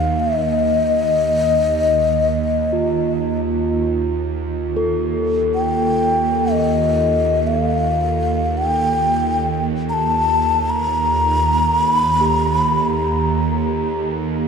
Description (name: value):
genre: world meditative, free-time meditation music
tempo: free time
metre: none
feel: none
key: Eb lydian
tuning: A4 = 443 Hz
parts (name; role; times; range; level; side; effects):
- breathy mellow low xiao; melody; 0.0-14.0 s; Eb5 to Bb5; -18 LUFS; left 3 dB; ping-pong delay
- bowed-like drone; drone; 0.0-14.5 s; Eb2; -20 LUFS; right 3 dB; built-in reverb
- bronze singing bowl; texture; 2.7-14.5 s; F4 to A4; -24 LUFS; right 1 dB; none
room: wet lush hall reverb, RT60 1.8 s, small room ambience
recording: dark, warm production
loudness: -16 LUFS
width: side -6 dB against mid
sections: 0.0-4.6 A section; 4.6-14.5 A section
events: none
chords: none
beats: free time